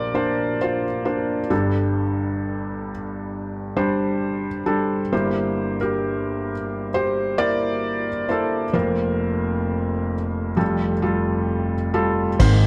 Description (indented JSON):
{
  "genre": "acoustic folk-pop ballad",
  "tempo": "66 BPM",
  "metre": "4/4",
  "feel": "straight",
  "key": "unclear",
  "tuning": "A4 = 442 Hz",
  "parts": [
    { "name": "felt-muted upright piano", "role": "melody", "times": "0.0-12.7 s", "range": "F1 to D5", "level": "-23 LUFS", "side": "equal", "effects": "slapback echo, plate reverb" },
    { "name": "pedal harmonium", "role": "sustained chords", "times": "12.4-12.7 s", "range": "Ab3 to C4", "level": "-34 LUFS", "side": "equal", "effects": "none" },
    { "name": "vintage muted fingered electric bass", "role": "bass", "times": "12.4-12.7 s", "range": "Ab1", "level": "-17 LUFS", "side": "equal", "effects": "none" },
    { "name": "vintage brush drum kit", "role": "drums", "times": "12.4-12.6 s", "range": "kick drum, ride cymbal", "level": "-21 LUFS", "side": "equal", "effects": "none" }
  ],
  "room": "light reverb",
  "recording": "dark, warm production",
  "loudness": "-23 LUFS",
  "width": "mono",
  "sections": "0.0-12.4 A section",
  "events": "none",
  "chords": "0.0 Bbadd9; 1.5 Gsus2; 5.1 C7/G; 8.7 Fsus4; 10.6 Fadd9"
}